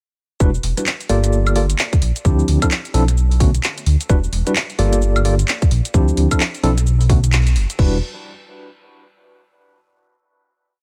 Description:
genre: UK garage, two-step garage.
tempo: 130 BPM.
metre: 4/4.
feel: swing 61% on 16ths.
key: unclear.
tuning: A4 = 439 Hz.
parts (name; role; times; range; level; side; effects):
tine electric piano; stabs; 0.4-8.0 s; D3 to D5; -24 LUFS; equal; medium tremolo, dub echo.
dark detuned saw bass; bass; 0.4-8.0 s; E1 to D2; -18 LUFS; equal; none.
electronic kick drum; drums; 0.4-7.9 s; none; -17 LUFS; equal; none.
garage drum kit; drums; 0.4-7.9 s; cabasa, crash cymbal, finger snaps, handclaps, hi-hat, woodblock; -25 LUFS; equal; none.
room: digital ambience.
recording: none.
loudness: -17 LUFS.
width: mono.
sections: 0.4-7.8 drop; 7.8-9.6 final chord.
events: drop 0.4-7.8; band accent 7.3.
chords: 0.4 Em9; 1.1 Gm9; 2.2 Dm9; 3.2 Bm; 4.1 Em9; 4.8 Gm9; 5.9 Dm9; 6.9 B5; 7.8 N.C..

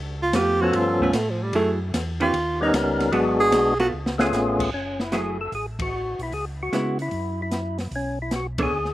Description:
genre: soul jazz organ trio.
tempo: 150 BPM.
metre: 4/4.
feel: swing 67% on 8ths.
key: F# minor.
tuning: A4 = 440 Hz.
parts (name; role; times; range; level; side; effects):
mellow tonewheel organ; bass; 0.0-8.9 s; F#1 to C#3; -30 LUFS; equal; slow rotary speaker.
warm tenor saxophone; melody; 0.2-3.9 s; E#3 to G#4; -22 LUFS; right 2 dB; none.
vintage hollow-body jazz guitar; accompaniment; 0.3-8.7 s; D#3 to C#5; -26 LUFS; right 2 dB; none.
open jazz drum kit; drums; 0.3-8.9 s; crash cymbal, hi-hat, kick drum, ride cymbal, snare drum; -30 LUFS; equal; none.
percussive tonewheel organ; melody; 0.6-8.9 s; E#3 to A#4; -24 LUFS; left 1 dB; slow rotary speaker, overdrive.
room: little or no reverb.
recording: recorded outdoors, with no room sound.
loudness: -21 LUFS.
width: side -15 dB against mid.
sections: 0.0-4.7 A section; 4.7-8.9 B section.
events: tenor saxophone solo 0.0-4.7; drum fill 3.9-4.3; band accent 5.7, 8.5.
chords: 0.0 C#aug7; 1.5 F#m9; 2.3 D#7b13; 3.1 G#m7b5; 3.9 C#7b13; 4.7 F#m9; 6.3 C#m7; 7.1 Esus2/F#; 7.9 Bmadd9.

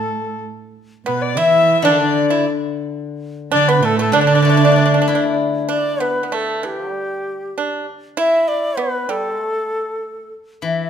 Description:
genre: chinese traditional, Chinese chamber ensemble.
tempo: 96 BPM.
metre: 2/4.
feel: rubato.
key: D zhi mode.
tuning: A4 = 439 Hz.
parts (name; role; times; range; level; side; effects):
bright reedy xiao; melody; 0.0-10.9 s; G4 to E5; -20 LUFS; left 1 dB; none.
dark cello; second line; 0.0-5.4 s; A2 to E3; -20 LUFS; right 7 dB; none.
rich erhu; second line; 0.0-5.4 s; A4 to E5; -22 LUFS; left 6 dB; none.
pipa; second line; 1.1-10.3 s; G3 to E4; -21 LUFS; right 5 dB; none.
steel-string zither; accompaniment; 1.8-6.3, 10.6-10.9 s; D3 to E4; -20 LUFS; left 5 dB; none.
room: moderate recital hall reverb, RT60 1.4 s.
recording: none.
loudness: -15 LUFS.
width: side -8 dB against mid.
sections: 0.0-5.7 A section; 5.7-10.9 B section.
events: none.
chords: none.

